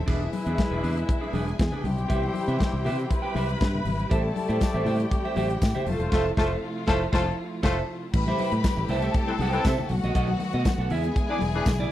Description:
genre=disco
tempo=119 BPM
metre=4/4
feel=straight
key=A minor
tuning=A4 = 440 Hz
part: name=clear studio string section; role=second line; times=0.0-11.9 s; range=E4 to B5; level=-32 LUFS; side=left 2 dB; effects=none
part: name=rich studio string section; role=sustained chords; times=0.0-11.9 s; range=B2 to G4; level=-34 LUFS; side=equal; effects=none
part: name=fingered electric bass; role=bass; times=0.0-11.8 s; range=E1 to C3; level=-27 LUFS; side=equal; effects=none
part: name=semi-hollow electric guitar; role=accompaniment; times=0.1-11.9 s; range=D4 to G5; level=-32 LUFS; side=right 4 dB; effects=spring reverb
part: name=clear horn section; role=stabs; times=0.1-11.7 s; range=E3 to D5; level=-33 LUFS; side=left 4 dB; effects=none
part: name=modern studio drum kit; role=drums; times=0.1-11.8 s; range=crash cymbal, hi-hat, kick drum, snare drum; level=-26 LUFS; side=equal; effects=none
part: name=congas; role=percussion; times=0.1-11.9 s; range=none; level=-34 LUFS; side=left 4 dB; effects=none
part: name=tambourine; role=percussion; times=4.6-11.8 s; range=none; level=-46 LUFS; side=right 15 dB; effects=none
room=small room reverb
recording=dry, close 1970s-style studio recording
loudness=-23 LUFS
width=side -13 dB against mid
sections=0.1-8.1 A section; 8.1-11.9 B section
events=band accent 6.1-8.1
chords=0.1 E7; 1.8 Cmaj7; 4.1 Am7; 5.9 Fmaj7; 8.1 Am7; 8.9 C6; 9.9 B7; 10.9 E7

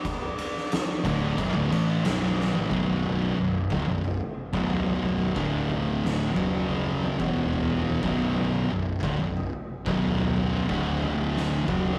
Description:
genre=stoner and doom metal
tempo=90 BPM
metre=4/4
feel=straight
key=B minor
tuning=A4 = 439 Hz
part: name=oversized low-tuned drum kit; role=drums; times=0.1-12.0 s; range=kick drum, ride cymbal, snare drum, toms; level=-33 LUFS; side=equal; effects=none
part: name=thick fuzz guitar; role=riff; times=1.0-12.0 s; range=B1 to A3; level=-30 LUFS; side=equal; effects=distortion
part: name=thick fuzz guitar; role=riff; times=1.0-12.0 s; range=B1 to A3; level=-30 LUFS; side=equal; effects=distortion
part: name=fuzz fingered electric bass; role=bass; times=1.1-12.0 s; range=B0 to A1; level=-37 LUFS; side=equal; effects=overdrive, tube saturation
room=light reverb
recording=rough rehearsal-room recording, warm saturation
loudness=-26 LUFS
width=mono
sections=0.0-2.7 A section; 2.7-12.0 B section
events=drum fill 2.4-2.7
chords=0.0 Bm; 5.4 D5; 6.4 F#5; 7.2 E5; 8.0 Bm; 10.7 D5

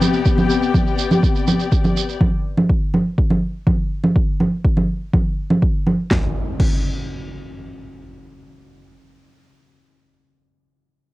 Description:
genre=melodic techno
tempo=123 BPM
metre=4/4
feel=straight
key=unclear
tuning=A4 = 440 Hz
part: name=deep house drum kit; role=drums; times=0.0-6.7 s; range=congas, crash cymbal, snare drum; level=-19 LUFS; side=right 1 dB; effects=cassette tape
part: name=shekere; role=percussion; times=0.0-2.2 s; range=none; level=-29 LUFS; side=right 9 dB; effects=none
part: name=rich symphonic string section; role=texture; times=0.0-2.2 s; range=C3 to G5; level=-21 LUFS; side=left 6 dB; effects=sidechain pumping, cassette tape
part: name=electronic kick drum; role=drums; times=0.3-6.7 s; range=none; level=-19 LUFS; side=equal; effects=cassette tape
part: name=impact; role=sound effects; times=6.1-9.2 s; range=none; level=-29 LUFS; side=equal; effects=none
room=light reverb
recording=home recording on cassette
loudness=-16 LUFS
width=side -18 dB against mid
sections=0.0-6.1 A section; 6.1-10.0 B section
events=none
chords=0.0 G/C; 6.1 N.C.

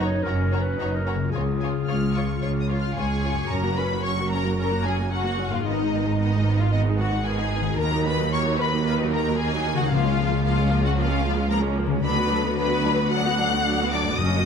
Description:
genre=cinematic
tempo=112 BPM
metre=4/4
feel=straight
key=F# major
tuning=A4 = 440 Hz
part: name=warm symphonic violin section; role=melody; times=0.0-14.5 s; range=D#5 to F#6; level=-30 LUFS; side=left 3 dB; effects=none
part: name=mellow clarinet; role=second line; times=0.0-2.9 s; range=G#4 to C#5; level=-32 LUFS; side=left 1 dB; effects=none
part: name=rich studio violin section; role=second line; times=0.0-14.5 s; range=D#4 to F#5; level=-29 LUFS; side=left 4 dB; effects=none
part: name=warm symphonic viola section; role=accompaniment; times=0.0-14.5 s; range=D#3 to F#4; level=-29 LUFS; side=right 2 dB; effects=none
part: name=concert harp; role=arpeggios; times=0.0-14.5 s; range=F#2 to A#5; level=-29 LUFS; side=left 8 dB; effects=none
part: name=rich symphonic cello section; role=bass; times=0.0-14.5 s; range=C#2 to G#2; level=-28 LUFS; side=right 2 dB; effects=none
part: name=rich symphonic double bass section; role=bass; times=0.0-14.5 s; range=F#1 to D#2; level=-27 LUFS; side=right 3 dB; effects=none
part: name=timpani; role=percussion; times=1.3-4.3, 9.9-10.7, 14.2-14.5 s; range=F#2 to C#3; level=-31 LUFS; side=left 2 dB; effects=none
room=moderate scoring stage reverb, RT60 2.1 s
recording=none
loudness=-21 LUFS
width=side -6 dB against mid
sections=0.0-3.5 A section; 3.5-14.5 B section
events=none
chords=0.0 F#; 1.3 C#; 3.5 F#; 5.7 G#m; 7.8 D#m; 9.9 C#6; 12.0 Bm/D

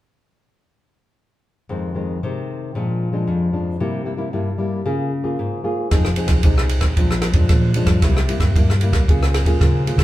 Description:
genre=samba and choro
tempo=114 BPM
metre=4/4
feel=straight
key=F minor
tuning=A4 = 440 Hz
part: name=nylon-string guitar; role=accompaniment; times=1.7-10.0 s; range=F2 to Ab4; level=-21 LUFS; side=left 2 dB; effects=none
part: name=hollow-body short-scale fingered electric bass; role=bass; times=5.9-10.0 s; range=F1 to Db3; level=-19 LUFS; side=equal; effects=none
part: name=compact cocktail drum kit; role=drums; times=5.9-10.0 s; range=kick drum, ride cymbal, rim click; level=-17 LUFS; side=right 1 dB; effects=none
room=wet large studio reverb, RT60 1.4 s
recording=band playing live in one room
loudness=-16 LUFS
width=side -15 dB against mid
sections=1.7-5.9 A section; 5.9-10.0 B section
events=none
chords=1.7 Fm7; 2.7 Bb7; 3.8 C7; 4.9 Db6; 5.9 Fm7; 7.0 Bb7; 8.0 C7; 9.1 Db6

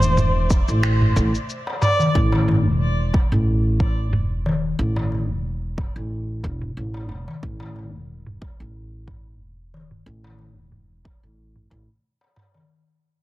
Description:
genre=organic downtempo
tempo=91 BPM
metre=4/4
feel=swing 54% on 16ths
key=unclear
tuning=A4 = 439 Hz
part: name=dark kamancheh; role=melody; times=0.0-2.1 s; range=C5 to D5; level=-25 LUFS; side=right 1 dB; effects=digital delay
part: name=upright bass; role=bass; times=0.0-11.8 s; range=E1 to A1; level=-22 LUFS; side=equal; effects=sidechain pumping
part: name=afro-pop drum kit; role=drums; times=0.0-12.5 s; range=finger snaps, shaker, toms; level=-25 LUFS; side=right 1 dB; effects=low-pass filter on toms, low-pass filter on perc, low-pass filter on snare
part: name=electronic kick drum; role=drums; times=0.5-11.9 s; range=none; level=-22 LUFS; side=equal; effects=none
part: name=darbuka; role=percussion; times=0.5-12.7 s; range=none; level=-27 LUFS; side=left 3 dB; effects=none
room=light reverb, small room ambience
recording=heavily compressed radio sound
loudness=-19 LUFS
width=side -16 dB against mid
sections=0.0-12.7 A section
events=fade-out 0.0-12.7; filter sweep on drum 0.0-12.7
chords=0.0 Esus4

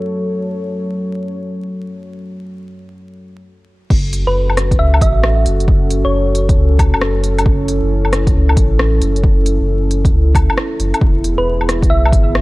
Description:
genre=future garage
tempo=135 BPM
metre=4/4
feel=swing 65% on 16ths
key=F# minor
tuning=A4 = 443 Hz
part: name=dark analog pad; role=sustained chords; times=0.0-12.4 s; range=F#3 to C#5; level=-21 LUFS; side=equal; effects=chorus, sidechain pumping
part: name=warm sub bass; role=bass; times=3.9-12.4 s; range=E1 to C#2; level=-15 LUFS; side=equal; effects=tube saturation, sidechain pumping
part: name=deep house drum kit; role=drums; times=3.9-12.4 s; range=crash cymbal, hi-hat, rim click, woodblock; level=-20 LUFS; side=left 1 dB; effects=none
part: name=electronic kick drum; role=drums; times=3.9-12.2 s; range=none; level=-14 LUFS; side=equal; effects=none
part: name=thumb-piano-like synth pluck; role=melody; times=4.3-6.7, 11.4-12.1 s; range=B4 to E5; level=-19 LUFS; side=right 1 dB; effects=chorus, vintage 12-bit sampler grit, tape echo
room=light reverb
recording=vinyl crackle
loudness=-12 LUFS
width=side -20 dB against mid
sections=0.0-3.9 A section; 3.9-12.4 B section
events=none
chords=0.0 F#m; 11.0 E

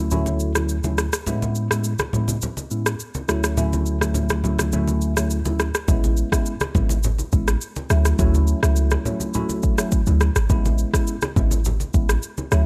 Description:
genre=afrobeats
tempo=104 BPM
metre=4/4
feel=straight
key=A major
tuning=A4 = 441 Hz
part: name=tine electric piano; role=accompaniment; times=0.0-12.7 s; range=D2 to E4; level=-26 LUFS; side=equal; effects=phaser
part: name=afro-pop drum kit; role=drums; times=0.1-12.7 s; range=kick drum, rim click, shaker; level=-26 LUFS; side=equal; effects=none
part: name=congas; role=percussion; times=0.1-12.5 s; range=none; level=-31 LUFS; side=equal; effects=none
part: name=clean 808-style bass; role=bass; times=5.9-12.7 s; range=G#1 to D2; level=-21 LUFS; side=equal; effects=none
room=digital ambience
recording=none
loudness=-21 LUFS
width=mono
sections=0.0-12.7 A section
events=break 0.0-5.9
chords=0.0 Dmaj7; 1.3 Amaj7; 3.3 Dmaj7; 5.9 Amaj7; 7.9 Dmaj7; 10.5 Amaj7

